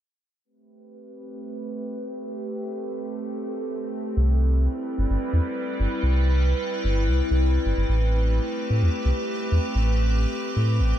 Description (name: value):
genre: IDM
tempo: 129 BPM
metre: 4/4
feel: straight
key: unclear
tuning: A4 = 440 Hz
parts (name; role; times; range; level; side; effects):
- icy glass pad; sustained chords; 1.0-11.0 s; G3 to B4; -28 LUFS; equal; chorus, built-in reverb
- round analog bass; bass; 4.2-10.9 s; G1 to A2; -20 LUFS; equal; none
room: light reverb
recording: low-pass filter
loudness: -22 LUFS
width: side -11 dB against mid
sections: 0.4-7.9 A section; 7.9-11.0 B section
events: filter sweep 0.4-7.9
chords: 0.4 Am9; 4.2 Cmaj7; 7.9 Am9